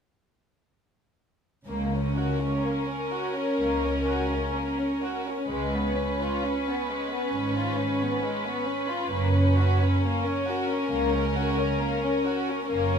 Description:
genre	classical, slow romantic movement for symphony orchestra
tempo	61-69 BPM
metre	4/4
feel	rubato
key	F# major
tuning	A4 = 441 Hz
part	dark studio violin section	melody	1.7-13.0 s	A#4 to B4	-31 LUFS	left 3 dB	none
part	warm studio violin section	second line	1.7-13.0 s	G#3 to F#4	-31 LUFS	left 2 dB	none
part	rich studio viola section	accompaniment	1.7-13.0 s	C#4	-30 LUFS	right 1 dB	none
part	dark studio double bass section	bass	1.7-13.0 s	F#1 to C#2	-31 LUFS	right 2 dB	none
part	warm studio cello section	bass	1.7-13.0 s	C#2 to G#2	-30 LUFS	right 1 dB	none
room	moderate recital hall reverb, RT60 1.7 s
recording	none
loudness	-24 LUFS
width	side -7 dB against mid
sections	1.7-13.0 A section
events	none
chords	1.7 F#/C#; 5.5 C#7(no3); 9.1 F#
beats	| 1.67 2.65 3.61 4.56 | 5.50 6.43 7.33 8.22 | 9.10 10.01 10.91 11.81 | 12.71

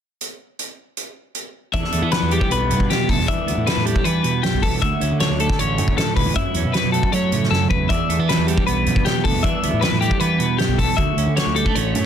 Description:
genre	math rock and midwest emo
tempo	156 BPM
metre	4/4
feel	straight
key	unclear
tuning	A4 = 440 Hz
part	loose indie drum kit	drums	0.2-12.0 s	hi-hat, kick drum, snare drum	-22 LUFS	equal	none
part	twelve-string electric guitar	accompaniment	1.7-12.1 s	D2 to F#4	-22 LUFS	right 8 dB	wide subtle chorus
part	twelve-string electric guitar	arpeggios	1.7-12.1 s	G4 to E5	-22 LUFS	left 11 dB	none
part	fuzz fingered electric bass	bass	1.7-12.1 s	A1 to F#3	-23 LUFS	equal	overdrive
room	little or no reverb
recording	dense, heavily limited modern master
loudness	-17 LUFS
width	side -8 dB against mid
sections	0.2-1.7 A section; 1.7-12.1 B section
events	drum fill 7.5-7.9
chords	0.2 N.C.; 1.7 Em7; 4.8 Dmaj9; 6.4 F#m7; 7.9 Em7; 11.0 Dmaj9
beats	| 0.21 0.59 0.98 1.36 | 1.75 2.13 2.51 2.90 | 3.28 3.67 4.05 4.43 | 4.82 5.20 5.59 5.97 | 6.36 6.74 7.13 7.51 | 7.90 8.28 8.67 9.05 | 9.44 9.82 10.21 10.59 | 10.98 11.36 11.75

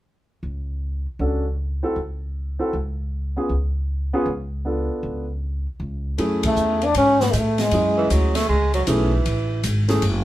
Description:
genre	jazz, small-group swing and bop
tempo	156 BPM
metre	4/4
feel	swing 65% on 8ths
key	F# minor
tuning	A4 = 440 Hz
part	upright bass	bass	0.4-10.2 s	F#1 to A2	-23 LUFS	equal	none
part	warm upright piano	accompaniment	1.2-10.0 s	G#3 to A4	-24 LUFS	equal	none
part	open jazz drum kit	drums	6.2-10.1 s	hi-hat, kick drum, ride cymbal, snare drum	-28 LUFS	left 1 dB	none
part	warm trombone	melody	6.5-8.1 s	G#3 to D4	-18 LUFS	left 1 dB	none
part	growling tenor saxophone	second line	8.0-9.6 s	E3 to A3	-23 LUFS	right 3 dB	none
room	moderate studio reverb, RT60 0.6 s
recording	band playing live in one room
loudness	-20 LUFS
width	side -14 dB against mid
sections	0.0-6.2 A section; 6.2-10.2 B section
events	band accent 6.4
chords	0.0 Dmaj7/C#; 1.6 C#mmaj7; 3.1 C#7; 4.7 C#7b9b13; 6.2 F#m9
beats	| 0.05 0.43 0.82 1.20 | 1.58 1.97 2.35 2.74 | 3.12 3.50 3.89 4.27 | 4.66 5.04 5.42 5.81 | 6.19 6.57 6.96 7.34 | 7.72 8.10 8.49 8.87 | 9.25 9.63 10.01

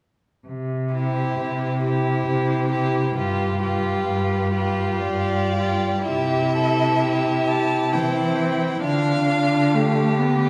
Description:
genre	classical, slow romantic movement for string quartet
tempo	54-70 BPM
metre	3/4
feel	rubato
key	C major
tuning	A4 = 437 Hz
part	rich cello	bass	0.5-10.5 s	G2 to E3	-26 LUFS	equal	none
part	rich violin	melody	0.9-10.2 s	B4 to A5	-30 LUFS	equal	none
part	rich viola	accompaniment	0.9-10.5 s	A3 to F4	-27 LUFS	equal	none
part	clear violin	second line	1.0-10.5 s	E4 to A4	-28 LUFS	equal	none
room	wet concert hall reverb, RT60 2.1 s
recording	heard from further back in the room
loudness	-22 LUFS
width	mono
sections	0.5-6.1 A section; 6.1-10.5 B section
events	none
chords	0.5 C; 3.2 G7; 6.1 C; 8.8 G7/D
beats	| 0.48 1.40 2.27 | 3.16 4.08 5.05 | 6.09 7.02 7.94 | 8.83 9.73

